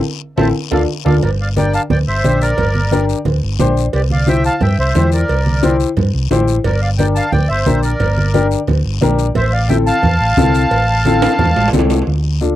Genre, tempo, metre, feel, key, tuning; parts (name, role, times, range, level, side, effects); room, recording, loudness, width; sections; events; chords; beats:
latin, cumbia; 177 BPM; 4/4; straight; A4 = 443 Hz
accordion; melody; 0.4-11.7 s; G4 to A5; -18 LUFS; right 1 dB; light tremolo tuning
dark upright piano; accompaniment; 0.4-12.6 s; C4 to C5; -17 LUFS; left 5 dB
hollow-body short-scale fingered electric bass; bass; 0.4-12.6 s; G1 to G2; -16 LUFS; equal
congas; percussion; 0.4-12.6 s; -20 LUFS; right 3 dB
guiro; percussion; 0.4-12.6 s; -31 LUFS; left 15 dB
timbales and cowbell; percussion; 0.4-12.1 s; -24 LUFS; right 6 dB
little or no reverb; dry, close 1970s-style studio recording, faint mains hum; -12 LUFS; side -13 dB against mid
0.0-1.2 A section; 1.2-12.1 B section
band accent 0.0-1.2; drum fill 11.2-12.1
0.0 Am; 0.5 Dm; 1.2 Gm; 3.9 C; 6.6 Gm; 9.4 Am
0.21 0.55 0.89 | 1.23 1.56 1.90 2.24 | 2.58 2.92 3.26 3.60 | 3.94 4.28 4.61 4.95 | 5.29 5.63 5.97 6.31 | 6.64 6.98 7.32 7.66 | 8.00 8.34 8.68 9.02 | 9.36 9.70 10.03 10.37 | 10.71 11.05 11.39 11.73 | 12.07 12.41